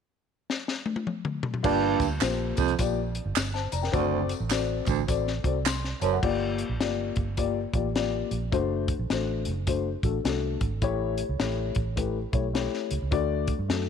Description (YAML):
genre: uptempo 1960s-style soul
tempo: 104 BPM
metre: 4/4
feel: swing 63% on 8ths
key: G minor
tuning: A4 = 439 Hz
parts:
  - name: compact cocktail drum kit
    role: drums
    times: 0.5-13.9 s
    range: crash cymbal, hi-hat, kick drum, snare drum, toms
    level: -30 LUFS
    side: left 2 dB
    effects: none
  - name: dark upright piano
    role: accompaniment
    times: 1.6-13.9 s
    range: A3 to C6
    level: -29 LUFS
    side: left 10 dB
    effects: none
  - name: breathy baritone saxophone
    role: riff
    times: 1.6-6.2 s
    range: D2 to G2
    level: -29 LUFS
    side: right 14 dB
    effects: none
  - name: vintage muted fingered electric bass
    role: bass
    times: 1.6-13.9 s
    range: F1 to G2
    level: -30 LUFS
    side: right 2 dB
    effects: none
  - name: tambourine and handclaps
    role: percussion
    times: 1.6-6.1 s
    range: none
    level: -35 LUFS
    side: right 6 dB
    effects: none
room: light reverb, studio reverb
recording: 1960s-style stereo with parts hard left and right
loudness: -25 LUFS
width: side -7 dB against mid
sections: 0.0-1.6 A section; 1.6-6.2 B section; 6.2-13.9 C section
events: drum fill 0.5-1.6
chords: 0.0 N.C.; 1.6 Gm7; 3.9 D7/F#; 6.2 Gm7; 8.5 D7/F#; 10.8 A7; 13.1 D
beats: 0.49 1.06 | 1.64 2.21 2.79 3.36 | 3.93 4.51 5.08 5.65 | 6.23 6.80 7.38 7.95 | 8.53 9.10 9.68 10.25 | 10.83 11.40 11.97 12.55 | 13.12 13.70